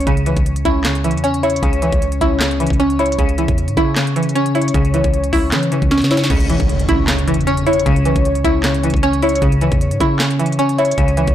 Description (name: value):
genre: hip hop, trap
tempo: 154 BPM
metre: 4/4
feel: half-time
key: C# minor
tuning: A4 = 440 Hz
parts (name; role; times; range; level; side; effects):
- glassy digital keys; arpeggios; 0.0-11.3 s; C#3 to C#5; -19 LUFS; left 2 dB; chorus, tape echo
- warm 808-style bass; bass; 0.0-11.3 s; C#2 to E3; -21 LUFS; equal; none
- trap drum kit; drums; 0.0-11.3 s; crash cymbal, handclaps, hi-hat, kick drum, snare drum; -19 LUFS; equal; none
- string-like resonator pluck; accompaniment; 0.1-11.3 s; C#3 to E4; -18 LUFS; right 1 dB; chorus, phaser
- impact; sound effects; 6.3-7.9 s; none; -24 LUFS; right 1 dB; none
room: light reverb, digital ambience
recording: blown-out, overdriven recording, overdrive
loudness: -13 LUFS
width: side -11 dB against mid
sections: 0.0-6.3 A section; 6.3-11.3 B section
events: drum fill 5.9-6.3; impact 6.3-7.9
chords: 0.0 C#m